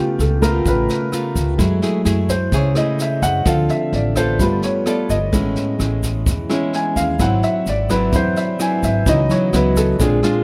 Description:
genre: bossa nova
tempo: 128 BPM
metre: 4/4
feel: straight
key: C# minor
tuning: A4 = 440 Hz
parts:
  - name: nylon-string guitar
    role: accompaniment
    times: 0.0-10.4 s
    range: G#2 to A4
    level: -23 LUFS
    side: equal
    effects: none
  - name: warm grand piano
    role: accompaniment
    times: 0.0-10.4 s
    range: E3 to G#5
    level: -23 LUFS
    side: equal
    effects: none
  - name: mellow French horn section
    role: sustained chords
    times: 0.0-10.4 s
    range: A2 to G#4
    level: -32 LUFS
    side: equal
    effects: none
  - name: upright bass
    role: bass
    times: 0.2-10.2 s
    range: G1 to F#2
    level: -23 LUFS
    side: equal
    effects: none
  - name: jazz brush drum kit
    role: drums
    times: 0.2-10.3 s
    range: kick drum, rim click, snare drum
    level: -26 LUFS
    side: equal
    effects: none
  - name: tube shaker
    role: percussion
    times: 0.2-10.4 s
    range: none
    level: -37 LUFS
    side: equal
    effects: none
room: little or no reverb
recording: none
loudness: -18 LUFS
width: mono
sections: 0.0-10.4 A section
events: grand piano solo 0.0-10.4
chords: 0.0 C#aug7; 1.6 F#m9; 3.5 Dm7; 4.4 G9; 5.3 Amaj7; 7.2 G#aug7; 9.1 C#m11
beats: 0.19 0.66 1.12 | 1.59 2.06 2.53 2.99 | 3.46 3.93 4.40 4.86 | 5.33 5.80 6.26 6.73 | 7.20 7.67 8.13 8.60 | 9.07 9.54 10.00

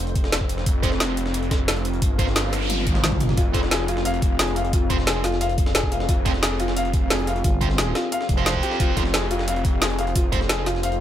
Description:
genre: dark technical drum and bass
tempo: 177 BPM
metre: 4/4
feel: straight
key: F minor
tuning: A4 = 440 Hz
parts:
  - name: deep dark ambient pad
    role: sustained chords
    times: 0.0-11.0 s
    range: C4 to F5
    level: -30 LUFS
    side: left 1 dB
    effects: chorus, built-in reverb, sidechain pumping
  - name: wide detuned saw bass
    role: bass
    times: 0.0-11.0 s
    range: F1 to G1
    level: -26 LUFS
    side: equal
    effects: chorus, sidechain pumping
  - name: breakbeat sampler-style drum kit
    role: drums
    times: 0.1-11.0 s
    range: hi-hat, snare drum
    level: -31 LUFS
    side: equal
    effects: high-pass filter on hats, high-pass filter on snare, high-pass filter on room
  - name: drum and bass drum kit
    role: drums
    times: 0.2-10.9 s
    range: hi-hat, snare drum, toms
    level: -25 LUFS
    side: equal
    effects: overdrive
  - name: electronic kick drum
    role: drums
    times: 0.2-10.4 s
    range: none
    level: -22 LUFS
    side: equal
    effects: overdrive
  - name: sludgy distorted guitar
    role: stabs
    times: 0.8-10.4 s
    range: C4 to C5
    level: -31 LUFS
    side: right 4 dB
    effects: overdrive, tape echo
  - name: noise sweep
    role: sound effects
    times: 2.3-3.4 s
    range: none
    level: -32 LUFS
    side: right 2 dB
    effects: none
  - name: growling FM bass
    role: bass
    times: 2.9-3.4, 7.4-8.6 s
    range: F1 to Ab1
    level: -24 LUFS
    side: equal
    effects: none
  - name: felt-muted upright piano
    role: arpeggios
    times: 3.4-10.9 s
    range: F4 to F5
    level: -27 LUFS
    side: left 2 dB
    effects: sidechain pumping, tape echo
room: digital ambience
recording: none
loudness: -19 LUFS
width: side -11 dB against mid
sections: 0.0-11.0 A section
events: noise sweep 2.3-3.4; drum fill 2.7-3.4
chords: 0.0 F5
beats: 0.33 | 0.66 1.00 1.34 1.68 | 2.02 2.36 2.70 3.04 | 3.38 3.71 4.05 4.39 | 4.73 5.07 5.41 5.75 | 6.09 6.43 6.77 7.11 | 7.44 7.78 8.12 8.46 | 8.80 9.14 9.48 9.82 | 10.16 10.49 10.83

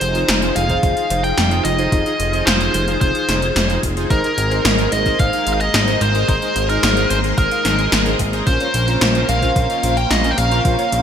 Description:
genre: synthwave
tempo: 110 BPM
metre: 4/4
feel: straight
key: F minor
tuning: A4 = 440 Hz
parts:
  - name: biting lead guitar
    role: melody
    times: 0.0-11.0 s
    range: Bb4 to G5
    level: -20 LUFS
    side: equal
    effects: overdrive, ping-pong delay
  - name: string machine, full ensemble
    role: sustained chords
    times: 0.0-11.0 s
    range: Ab3 to F5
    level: -23 LUFS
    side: equal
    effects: phaser, ensemble chorus, sidechain pumping
  - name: fat analog bass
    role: bass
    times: 0.0-11.0 s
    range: F1 to Bb1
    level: -20 LUFS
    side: equal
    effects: none
  - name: 80s electronic pad drums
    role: drums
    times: 0.0-11.0 s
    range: hi-hat, snare drum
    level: -20 LUFS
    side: equal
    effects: overdrive, studio reverb, gated reverb
  - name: chorused polysynth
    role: stabs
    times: 0.2-10.9 s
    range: Db4 to F5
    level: -24 LUFS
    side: left 1 dB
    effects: vintage 12-bit sampler grit
  - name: electronic kick drum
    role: drums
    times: 0.7-10.8 s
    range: none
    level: -20 LUFS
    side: equal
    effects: overdrive, studio reverb
room: light reverb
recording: bright 1980s-style digital production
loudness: -14 LUFS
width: side -8 dB against mid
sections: 0.0-11.0 A section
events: none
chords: 0.0 Fm7; 4.1 Abadd9; 8.5 Bbmadd9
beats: 0.29 0.83 1.38 | 1.92 2.47 3.01 3.56 | 4.11 4.65 5.20 5.74 | 6.29 6.83 7.38 7.92 | 8.47 9.01 9.56 10.11 | 10.65

